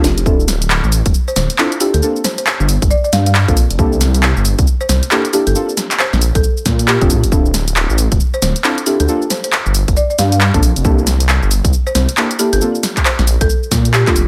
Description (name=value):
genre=UK garage, two-step garage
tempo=136 BPM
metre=4/4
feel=swing 62% on 16ths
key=D minor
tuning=A4 = 440 Hz
part: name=folk marimba with medium hard mallets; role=melody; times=0.0-14.3 s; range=F4 to F5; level=-23 LUFS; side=equal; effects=tape echo
part: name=deep mellow chord stab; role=stabs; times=0.0-14.1 s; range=Bb3 to A4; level=-21 LUFS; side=equal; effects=chorus, tape echo
part: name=dark detuned saw bass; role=bass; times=0.0-14.3 s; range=D1 to Bb2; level=-17 LUFS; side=equal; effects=none
part: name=house drum kit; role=drums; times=0.0-14.3 s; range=handclaps, hi-hat, shaker, snare drum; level=-19 LUFS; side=equal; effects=overdrive
part: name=electronic kick drum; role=drums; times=0.3-14.1 s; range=none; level=-17 LUFS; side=equal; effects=overdrive
room=little or no reverb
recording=none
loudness=-14 LUFS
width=mono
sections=0.0-14.3 A section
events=drum fill 0.0, 14.0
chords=0.3 Dm7; 2.0 Gm11; 3.8 C13; 5.6 Bbmaj7; 7.3 Dm7; 9.1 Gm11; 10.8 C13; 12.6 Bbmaj7